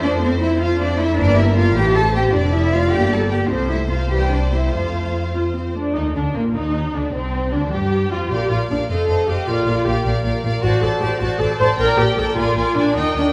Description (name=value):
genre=quick classical-period movement for string orchestra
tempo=103 BPM (dotted quarters)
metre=6/8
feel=rubato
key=F major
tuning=A4 = 435 Hz
part: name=rich studio violin section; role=melody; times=0.0-13.3 s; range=Bb3 to A5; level=-31 LUFS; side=equal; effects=none
part: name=rich chamber violin section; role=second line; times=0.0-13.3 s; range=Bb3 to A5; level=-28 LUFS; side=equal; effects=none
part: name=warm chamber viola section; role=accompaniment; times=0.0-13.3 s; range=D3 to C5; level=-24 LUFS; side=equal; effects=none
part: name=rich chamber double bass section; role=bass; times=0.0-13.2 s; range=F1 to G2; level=-24 LUFS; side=equal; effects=none
part: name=warm chamber cello section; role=bass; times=0.0-13.2 s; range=F2 to A4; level=-25 LUFS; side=equal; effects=none
room=moderate scoring stage reverb, RT60 1.9 s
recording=studio reverb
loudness=-19 LUFS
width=mono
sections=0.0-6.0 A section; 6.0-13.3 B section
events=none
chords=0.0 F; 1.2 Edim/G; 1.8 Am; 2.3 Dm/F; 2.9 Gm; 3.5 F/C; 4.1 C; 4.7 F; 6.0 Bbadd11; 6.6 N.C.; 7.1 G5; 8.3 Bb; 8.9 F7; 9.5 Bb; 10.6 D5/A; 11.8 Gm/Bb; 12.4 Bb7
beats=| 0.03 0.61 | 1.19 1.76 | 2.34 2.93 | 3.51 4.10 | 4.72 5.34 | 5.96 6.55 | 7.14 7.72 | 8.31 8.89 | 9.47 10.05 | 10.62 11.20 | 11.79 12.37 | 12.96